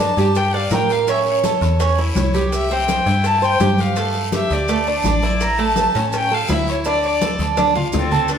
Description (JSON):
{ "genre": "latin, Cuban son and guajira", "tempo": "166 BPM", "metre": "4/4", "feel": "straight", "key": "D minor", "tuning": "A4 = 440 Hz", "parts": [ { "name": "warm violin", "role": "melody", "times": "0.0-8.4 s", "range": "C4 to Bb5", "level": "-21 LUFS", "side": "left 2 dB", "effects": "none" }, { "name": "Cuban tres", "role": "arpeggios", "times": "0.0-8.3 s", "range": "A3 to D5", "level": "-20 LUFS", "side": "right 3 dB", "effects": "none" }, { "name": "metallic FM bass", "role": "bass", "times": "0.0-8.4 s", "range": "A1 to A2", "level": "-22 LUFS", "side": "equal", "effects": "none" }, { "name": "bongos", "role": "percussion", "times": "0.0-8.4 s", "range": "none", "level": "-29 LUFS", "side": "left 3 dB", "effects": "none" }, { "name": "guiro", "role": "percussion", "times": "0.0-8.4 s", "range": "none", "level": "-33 LUFS", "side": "left 4 dB", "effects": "none" }, { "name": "congas", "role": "percussion", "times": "0.2-8.4 s", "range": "none", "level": "-26 LUFS", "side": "left 1 dB", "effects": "none" }, { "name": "maracas", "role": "percussion", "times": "0.2-8.4 s", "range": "none", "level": "-35 LUFS", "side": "right 4 dB", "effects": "none" }, { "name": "breathy bright jazz flute", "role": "second line", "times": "8.0-8.4 s", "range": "A4", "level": "-26 LUFS", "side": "left 5 dB", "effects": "none" } ], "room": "wet stone room reverb, RT60 1.5 s", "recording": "band playing live in one room", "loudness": "-15 LUFS", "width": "side -8 dB against mid", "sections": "0.0-8.3 A section", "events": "drum fill 7.4-8.3", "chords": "0.0 Gm; 1.1 A; 2.5 C; 4.0 Gsus2; 5.4 A; 6.8 Dm" }